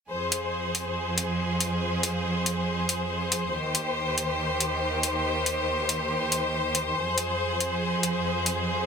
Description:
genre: heavy wobble dubstep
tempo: 140 BPM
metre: 4/4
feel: swing 55% on 16ths, half-time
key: F minor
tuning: A4 = 444 Hz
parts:
  - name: bright studio string section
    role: sustained chords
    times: 0.1-8.9 s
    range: Eb2 to C5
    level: -26 LUFS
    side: equal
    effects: none
  - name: electronic hi-hat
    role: drums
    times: 0.3-8.6 s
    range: none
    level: -26 LUFS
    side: left 2 dB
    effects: overdrive
room: moderate digital room reverb, RT60 0.9 s, small room ambience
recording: dense, heavily limited modern master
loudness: -25 LUFS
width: side -6 dB against mid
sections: 0.1-8.9 A section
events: none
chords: 0.1 Fm; 3.5 Cm/Eb; 7.0 Fm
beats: | 0.10 0.53 0.96 1.39 | 1.82 2.25 2.68 3.10 | 3.53 3.96 4.39 4.82 | 5.25 5.68 6.11 6.53 | 6.96 7.39 7.82 8.25 | 8.68

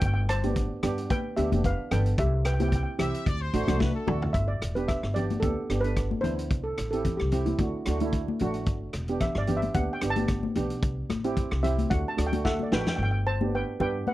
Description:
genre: calypso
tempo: 111 BPM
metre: 4/4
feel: swing 54% on 16ths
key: G major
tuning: A4 = 441 Hz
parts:
  - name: steel pan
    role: melody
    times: 0.0-14.1 s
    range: E4 to A5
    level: -31 LUFS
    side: equal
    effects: none
  - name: steel pan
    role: accompaniment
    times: 0.0-14.1 s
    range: A3 to A4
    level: -31 LUFS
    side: right 3 dB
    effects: none
  - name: upright bass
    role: bass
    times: 0.0-14.0 s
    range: E1 to G2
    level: -29 LUFS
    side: equal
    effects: none
  - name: vintage drum kit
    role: drums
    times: 0.0-13.0 s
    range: hi-hat, kick drum, rim click, snare drum, toms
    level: -31 LUFS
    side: equal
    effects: none
  - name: congas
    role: percussion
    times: 0.4-14.1 s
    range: none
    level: -33 LUFS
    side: left 5 dB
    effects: none
  - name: bright horn section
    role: second line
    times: 3.0-4.3 s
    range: A4 to E5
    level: -35 LUFS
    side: left 3 dB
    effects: none
room: little or no reverb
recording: dry, close 1970s-style studio recording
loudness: -25 LUFS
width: side -16 dB against mid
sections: 0.0-4.3 A section; 4.3-13.0 B section; 13.0-14.1 A section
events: drum fill 3.8-4.3, 12.5-13.0; steel pan solo 4.3-13.0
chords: 0.0 G; 2.2 C; 3.3 D7; 4.3 G; 6.5 C6; 7.6 D; 8.7 Gadd9; 10.8 C6; 11.9 D; 13.0 G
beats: | 0.02 0.56 1.10 1.64 | 2.18 2.72 3.27 3.81 | 4.35 4.89 5.43 5.97 | 6.51 7.05 7.59 8.13 | 8.67 9.21 9.75 10.29 | 10.83 11.37 11.91 12.45 | 12.99 13.53 14.07

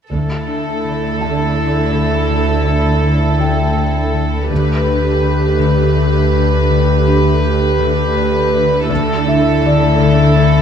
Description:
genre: cinematic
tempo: 82 BPM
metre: 3/4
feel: straight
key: unclear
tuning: A4 = 440 Hz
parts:
  - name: clear studio violin section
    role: melody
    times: 0.1-10.6 s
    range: A4 to B4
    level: -19 LUFS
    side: left 2 dB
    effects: none
  - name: dark studio viola section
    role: accompaniment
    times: 0.1-10.6 s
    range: A3 to G4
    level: -19 LUFS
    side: right 3 dB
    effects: none
  - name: buzzing marimba with medium mallets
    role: riff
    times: 0.1-10.6 s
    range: D3 to D4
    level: -19 LUFS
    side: left 9 dB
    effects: none
  - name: dark studio cello section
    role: bass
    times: 0.1-10.6 s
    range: D3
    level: -21 LUFS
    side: right 4 dB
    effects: none
  - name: dark studio double bass section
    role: bass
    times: 0.1-0.8, 4.5-5.2, 8.9-9.6 s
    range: D2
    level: -24 LUFS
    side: right 4 dB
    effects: none
  - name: analog drone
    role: drone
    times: 0.9-10.6 s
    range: D2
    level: -18 LUFS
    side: right 1 dB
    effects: chorus
  - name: felt-muted upright piano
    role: texture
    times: 1.2-10.6 s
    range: D5 to A5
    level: -24 LUFS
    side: right 1 dB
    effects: none
room: moderate scoring stage reverb, RT60 1.9 s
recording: dark, warm production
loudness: -12 LUFS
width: side -8 dB against mid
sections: 0.1-10.6 A section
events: none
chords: 0.1 Dsus2; 4.5 Gadd9/D; 8.9 Dsus2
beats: | 0.12 0.85 1.58 | 2.31 3.04 3.77 | 4.51 5.24 5.97 | 6.70 7.43 8.17 | 8.90 9.63 10.36

